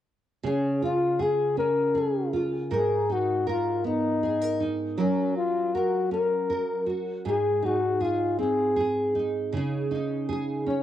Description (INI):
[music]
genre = pop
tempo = 53 BPM (dotted quarters)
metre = 6/8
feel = straight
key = Db major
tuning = A4 = 440 Hz
[part]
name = nylon-string guitar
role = accompaniment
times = 0.4-10.8 s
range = Ab2 to Bb4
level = -28 LUFS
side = right 2 dB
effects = double-tracked left and right, cassette tape
[part]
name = breathy flugelhorn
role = melody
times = 0.5-10.8 s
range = Db4 to Bb4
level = -25 LUFS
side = left 2 dB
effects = cassette tape
[sound]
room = moderate small room reverb, RT60 0.5 s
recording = home recording on cassette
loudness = -24 LUFS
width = side -11 dB against mid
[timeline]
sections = 0.4-10.8 A section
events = none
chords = 0.4 Db; 2.7 Abmadd9; 5.0 Gb; 7.3 Ab; 9.5 Dbsus2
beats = | 0.45 1.58 | 2.72 3.85 | 4.99 6.12 | 7.26 8.39 | 9.53 10.66